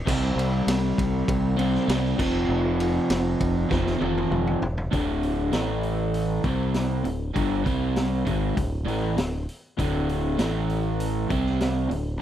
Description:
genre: classic rock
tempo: 99 BPM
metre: 4/4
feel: straight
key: unclear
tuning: A4 = 438 Hz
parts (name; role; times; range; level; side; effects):
- crunchy overdriven guitar; riff; 0.1-12.2 s; D2 to C4; -25 LUFS; equal; none
- growling fingered electric bass; bass; 0.1-12.2 s; D1 to C2; -28 LUFS; equal; overdrive
- raw garage drum kit; drums; 0.1-12.0 s; crash cymbal, hi-hat, kick drum, ride cymbal, snare drum, toms; -29 LUFS; equal; none
room: little or no reverb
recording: dry, close 1970s-style studio recording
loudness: -22 LUFS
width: side -11 dB against mid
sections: 0.0-4.9 A section; 4.9-12.2 B section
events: drum fill 3.7-4.9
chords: 0.1 C5; 2.2 F5; 4.9 D5; 5.5 A5; 6.4 C5; 7.0 D5; 7.7 C5; 8.3 D5; 10.4 A5; 11.3 C5

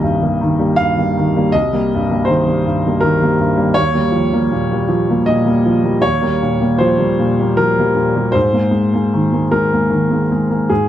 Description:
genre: neoclassical minimalist piano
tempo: 79 BPM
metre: 3/4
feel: rubato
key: unclear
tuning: A4 = 440 Hz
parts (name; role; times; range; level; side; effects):
- warm grand piano; solo; 0.0-10.9 s; C2 to F5; -13 LUFS; equal; none
room: light reverb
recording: dark, warm production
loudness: -13 LUFS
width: side -11 dB against mid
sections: 0.0-10.9 A section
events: none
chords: 0.0 Cm7; 3.8 Ebadd9; 8.4 Abadd9

